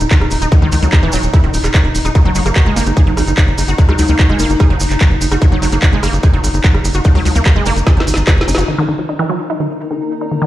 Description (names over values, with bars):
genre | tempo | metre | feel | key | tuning
psychedelic trance | 147 BPM | 4/4 | straight | unclear | A4 = 438 Hz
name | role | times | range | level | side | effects
pulsing gated texture | sustained chords | 0.0-10.5 s | Eb4 | -21 LUFS | equal | chorus, built-in reverb, sidechain pumping
tight sequencer bass | bass | 0.0-8.6 s | Eb1 to Db2 | -15 LUFS | equal | none
drum and bass drum kit | drums | 0.0-8.8 s | crash cymbal, handclaps, hi-hat, rim click, snare drum | -20 LUFS | equal | low-pass filter on snare, low-pass filter on hats, low-pass filter on cymbals, low-pass filter on room
maracas | percussion | 0.0-8.7 s | none | -27 LUFS | right 3 dB | none
wide unison pluck | riff | 0.1-10.5 s | Eb3 to Ab4 | -20 LUFS | moving between left 3 dB and right 3 dB | auto-pan, sidechain pumping, tape echo
electronic kick drum | drums | 0.1-8.4 s | none | -10 LUFS | equal | none
granular cloud pad | texture | 9.4-10.5 s | Eb4 to Bb5 | -24 LUFS | left 2 dB | built-in reverb, sidechain pumping
room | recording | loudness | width
light reverb, digital ambience | played on a big sound system in a bare room, stone room reverb | -10 LUFS | side -14 dB against mid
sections
0.0-8.7 A section; 8.7-10.5 B section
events
drum fill 7.9-8.7; band accent 8.5; filter sweep on synth arpeggio sound 8.7-10.5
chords
0.0 N.C.; 2.2 Gb5; 8.7 Eb5